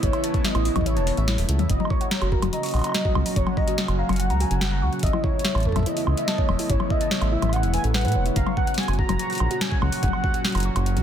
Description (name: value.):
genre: IDM.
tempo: 144 BPM.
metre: 4/4.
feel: straight.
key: unclear.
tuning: A4 = 440 Hz.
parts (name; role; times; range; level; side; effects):
warm velvety synth lead; melody; 0.0-11.0 s; A4 to A#5; -29 LUFS; equal; chorus, ping-pong delay.
warbly tape-like pad; sustained chords; 0.0-11.0 s; A#2 to F#4; -30 LUFS; equal; chorus, built-in reverb.
harp-like synth pluck; arpeggios; 0.0-11.0 s; E4 to C#6; -31 LUFS; right 2 dB; chorus, tape echo.
round analog bass; bass; 0.0-11.0 s; E1 to A2; -23 LUFS; equal; none.
booming analog drum machine; drums; 0.0-11.0 s; hi-hat, snare drum, toms, woodblock; -27 LUFS; left 2 dB; none.
electronic kick drum; drums; 0.0-10.3 s; none; -25 LUFS; equal; none.
room: light reverb, digital ambience.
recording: dense, heavily limited modern master.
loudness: -20 LUFS.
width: side -9 dB against mid.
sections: 0.0-1.7 A section; 1.7-11.0 A section.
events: kick drops out 0.9-1.7.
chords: 0.0 Aadd9; 1.7 F#; 5.0 Aadd9; 8.4 F#.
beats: | 0.03 0.45 0.86 1.28 | 1.70 2.11 2.53 2.95 | 3.36 3.78 4.20 4.61 | 5.03 5.45 5.86 6.28 | 6.70 7.11 7.53 7.95 | 8.36 8.78 9.20 9.61 | 10.03 10.45 10.86.